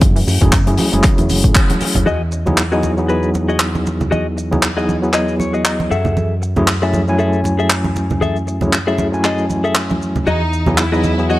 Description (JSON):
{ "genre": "nu-disco, nu disco", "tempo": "117 BPM", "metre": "4/4", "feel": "swing 56% on 16ths", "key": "E major", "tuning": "A4 = 439 Hz", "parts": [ { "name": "overdriven tine electric piano", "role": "accompaniment", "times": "0.0-11.4 s", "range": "F#3 to G#5", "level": "-19 LUFS", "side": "equal", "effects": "fast tremolo, sidechain pumping, analog delay" }, { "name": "analog pluck", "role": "arpeggios", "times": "0.0-2.0 s", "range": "C#3 to C#4", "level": "-27 LUFS", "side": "right 3 dB", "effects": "none" }, { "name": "fingered electric bass with an envelope filter", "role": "bass", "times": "0.0-11.4 s", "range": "F#1 to A2", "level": "-20 LUFS", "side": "equal", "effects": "none" }, { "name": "damped 70s drum kit", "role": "drums", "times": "0.0-10.9 s", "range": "handclaps, hi-hat", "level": "-19 LUFS", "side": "equal", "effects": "small room reverb" }, { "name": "electronic kick drum", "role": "drums", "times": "0.0-1.7 s", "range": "none", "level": "-13 LUFS", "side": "equal", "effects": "overdrive, small room reverb" }, { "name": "congas and maracas", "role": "percussion", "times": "0.0-11.4 s", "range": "none", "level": "-22 LUFS", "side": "right 2 dB", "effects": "none" }, { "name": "direct-recorded clean electric guitar", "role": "riff", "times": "2.1-11.4 s", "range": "F#4 to F#5", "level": "-21 LUFS", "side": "left 3 dB", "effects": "wide subtle chorus, low-pass filter" }, { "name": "clear studio violin section", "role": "melody", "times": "10.3-11.4 s", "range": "D#4 to F#4", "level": "-21 LUFS", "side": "right 1 dB", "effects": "none" } ], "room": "light reverb, small room ambience", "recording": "dry, gritty hardware recording", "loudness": "-13 LUFS", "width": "side -16 dB against mid", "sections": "0.0-2.1 A section; 2.1-11.4 B section", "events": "filter sweep on tine electric piano 0.0-2.1; band accent 1.6; clean electric guitar fill 5.1-6.2", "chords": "0.0 F#m9; 2.1 Emaj9; 5.9 F#m9; 10.3 Emaj9" }